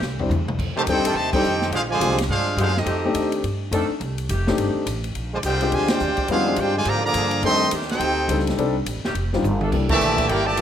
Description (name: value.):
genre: jazz, big band swing.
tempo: 210 BPM.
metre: 4/4.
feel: swing 61% on 8ths.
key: F major.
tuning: A4 = 440 Hz.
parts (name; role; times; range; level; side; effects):
upright bass; bass; 0.0-10.6 s; Eb1 to Ab2; -26 LUFS; equal; none.
swinging big-band drum kit; drums; 0.0-10.6 s; crash cymbal, hi-hat, kick drum, ride cymbal, snare drum, toms; -29 LUFS; equal; none.
warm grand piano; accompaniment; 0.2-10.6 s; G3 to C5; -25 LUFS; left 3 dB; none.
bright trumpet section; melody; 0.8-10.6 s; C4 to C6; -23 LUFS; equal; none.
warm trombone section; second line; 0.8-10.6 s; Bb2 to G4; -25 LUFS; right 2 dB; none.
mellow saxophone section; sustained chords; 0.8-10.6 s; D3 to A4; -31 LUFS; left 1 dB; none.
room: moderate large studio reverb, RT60 1.4 s.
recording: faint mains hum.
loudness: -19 LUFS.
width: side -9 dB against mid.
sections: 0.6-10.6 A section.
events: drum fill 0.0-0.6, 9.4; band accent 1.3, 5.9, 9.9.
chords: 0.0 C; 0.6 F13; 1.7 Bb13; 2.9 F13; 5.2 Bb13; 7.4 F13; 9.7 C13.